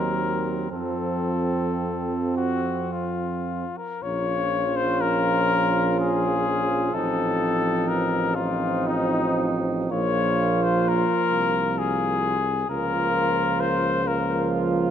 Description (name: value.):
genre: classical, hymn-like piece for brass band.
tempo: 35-45 BPM (dotted quarters).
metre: 6/8.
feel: rubato.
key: Bb minor.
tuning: A4 = 440 Hz.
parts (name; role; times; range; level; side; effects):
mellow cornet; melody; 0.0-14.5 s; Eb4 to Db5; -25 LUFS; left 6 dB; none.
mellow flugelhorn; second line; 0.0-14.9 s; C4 to F4; -30 LUFS; right 7 dB; none.
mellow trombone; accompaniment; 0.0-14.9 s; F3 to Gb3; -29 LUFS; right 4 dB; none.
warm euphonium; accompaniment; 0.0-14.9 s; Bb3 to Eb4; -30 LUFS; left 1 dB; none.
warm tuba; bass; 0.0-14.9 s; A1 to F2; -29 LUFS; right 1 dB; none.
room: moderate concert hall reverb, RT60 2.3 s.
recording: none.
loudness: -21 LUFS.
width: side -9 dB against mid.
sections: 0.0-4.0 A section; 4.0-14.9 B section.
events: none.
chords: 0.0 Cdim/Eb; 0.7 F; 4.0 Bbm; 6.9 F7/A; 9.9 Bb5; 12.7 Bbm/Db.